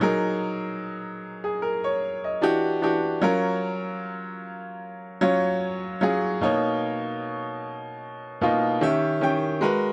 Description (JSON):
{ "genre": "R&B", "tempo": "75 BPM", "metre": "4/4", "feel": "swing 54% on 16ths", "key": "F# major", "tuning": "A4 = 440 Hz", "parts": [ { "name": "bright baby grand piano", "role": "solo", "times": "0.0-9.9 s", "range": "B2 to G5", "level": "-26 LUFS", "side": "equal", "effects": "none" } ], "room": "light reverb, studio reverb", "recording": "none", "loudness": "-25 LUFS", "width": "mono", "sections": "0.0-9.9 A section", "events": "none", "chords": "0.0 F#69; 2.4 Em9; 3.2 F#maj9; 6.4 Bmaj9; 8.8 D#7b9", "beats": "| 0.02 0.82 1.62 2.42 | 3.22 4.02 4.82 5.62 | 6.42 7.22 8.02 8.82 | 9.62" }